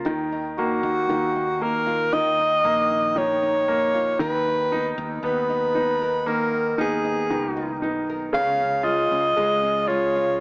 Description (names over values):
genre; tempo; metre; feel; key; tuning
pop; 58 BPM; 4/4; straight; unclear; A4 = 439 Hz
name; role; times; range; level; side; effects
bright concert grand piano; accompaniment; 0.0-10.4 s; Db3 to F4; -26 LUFS; equal; none
nylon-string guitar; arpeggios; 0.0-10.4 s; Db3 to Bb4; -33 LUFS; left 1 dB; none
mellow fretless electric bass; bass; 0.0-10.4 s; Bb1 to Eb2; -35 LUFS; equal; none
breathy alto saxophone; melody; 0.6-10.4 s; Gb4 to F5; -21 LUFS; equal; none
room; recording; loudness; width
light reverb, small room reverb; small speaker sound; -20 LUFS; side -30 dB against mid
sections
0.0-10.4 A section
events
none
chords
0.1 Ebmadd9; 4.2 Abmadd9/Eb; 8.3 Db